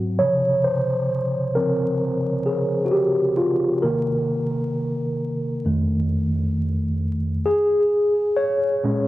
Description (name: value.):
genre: hip hop.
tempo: 66 BPM.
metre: 4/4.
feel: swing 58% on 16ths.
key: Bb dorian.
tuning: A4 = 440 Hz.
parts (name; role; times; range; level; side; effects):
mellow tine electric piano; solo; 0.0-9.1 s; F2 to Db5; -19 LUFS; equal; medium stereo tremolo, low-pass filter, cassette tape, analog delay.
room: wet studio reverb, RT60 0.5 s.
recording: home recording on cassette, vinyl crackle.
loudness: -19 LUFS.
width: side -16 dB against mid.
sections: 0.0-7.5 A section; 7.5-9.1 B section.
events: tine electric piano solo 0.0-7.5, 7.5-9.1.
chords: 0.2 Dbmaj7; 3.8 Cm7; 5.7 F7; 7.5 Bbm7.